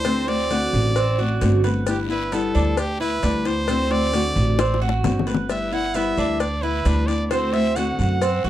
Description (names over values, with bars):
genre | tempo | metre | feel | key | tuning
latin, Cuban son and guajira | 132 BPM | 4/4 | straight | G major | A4 = 439 Hz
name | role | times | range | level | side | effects
brilliant trumpet | melody | 0.0-8.5 s | G4 to F#5 | -26 LUFS | right 1 dB | none
fingerpicked steel-string acoustic guitar | accompaniment | 0.0-8.5 s | D3 to F#4 | -25 LUFS | left 4 dB | none
Cuban tres | arpeggios | 0.0-8.5 s | B3 to B4 | -26 LUFS | right 5 dB | none
upright bass | bass | 0.0-8.5 s | G1 to F#2 | -23 LUFS | right 1 dB | none
cowbell and bongos | percussion | 0.0-8.4 s | none | -27 LUFS | left 7 dB | none
maracas | percussion | 0.0-8.5 s | none | -43 LUFS | right 12 dB | none
guiro | percussion | 0.1-8.5 s | none | -39 LUFS | left 17 dB | none
room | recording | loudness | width
little or no reverb | dry, close 1970s-style studio recording | -19 LUFS | side -12 dB against mid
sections
0.0-8.5 A section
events
drum fill 4.6-5.5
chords
0.0 D7; 1.9 G6; 3.7 D7; 5.5 G6; 7.3 D7